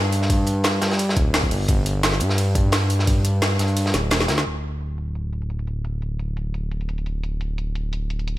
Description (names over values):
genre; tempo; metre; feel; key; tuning
liquid drum and bass; 173 BPM; 4/4; straight; unclear; A4 = 440 Hz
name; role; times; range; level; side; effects
smooth gliding synth bass; bass; 0.0-8.4 s; D1 to G2; -22 LUFS; equal; none
crunchy breakbeat drum kit; drums; 0.1-4.4 s; hi-hat, snare drum; -27 LUFS; equal; high-pass filter on hats, studio reverb, high-pass filter on snare, high-pass filter on room
drum and bass drum kit; drums; 0.1-8.3 s; hi-hat, ride cymbal, snare drum; -25 LUFS; equal; overdrive, low-pass filter on hats, studio reverb, low-pass filter on cymbals, low-pass filter on snare
electronic kick drum; drums; 0.3-3.1 s; none; -21 LUFS; equal; studio reverb
room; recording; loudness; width
studio reverb; none; -20 LUFS; side -16 dB against mid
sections
0.0-4.5 A section; 4.5-8.4 B section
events
drop 0.0-4.5; kick drops out 3.8-4.5; drum fill 3.9-4.5; filter sweep on drum 4.5-8.4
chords
none